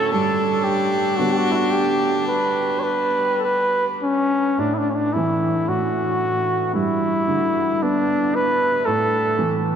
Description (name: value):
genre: celtic folk, Celtic slow air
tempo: 51-58 BPM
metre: 4/4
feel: rubato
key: unclear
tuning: A4 = 440 Hz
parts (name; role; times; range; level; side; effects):
- mellow trumpet; melody; 0.0-9.6 s; C#4 to C#5; -19 LUFS; equal; none
- clear fiddle; second line; 0.0-4.0 s; C#4 to D4; -28 LUFS; left 2 dB; none
- clear upright piano; accompaniment; 0.0-9.8 s; G2 to C#4; -24 LUFS; right 2 dB; none
room: wet cathedral reverb, RT60 6.8 s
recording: recorded in a church or concert hall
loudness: -18 LUFS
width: side -8 dB against mid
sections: 0.0-4.6 A section; 4.6-9.8 B section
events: none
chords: 0.1 G; 4.6 A5; 6.8 G; 8.9 A5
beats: | 0.12 1.18 2.28 3.43 | 4.58 5.67 6.75 7.82 | 8.86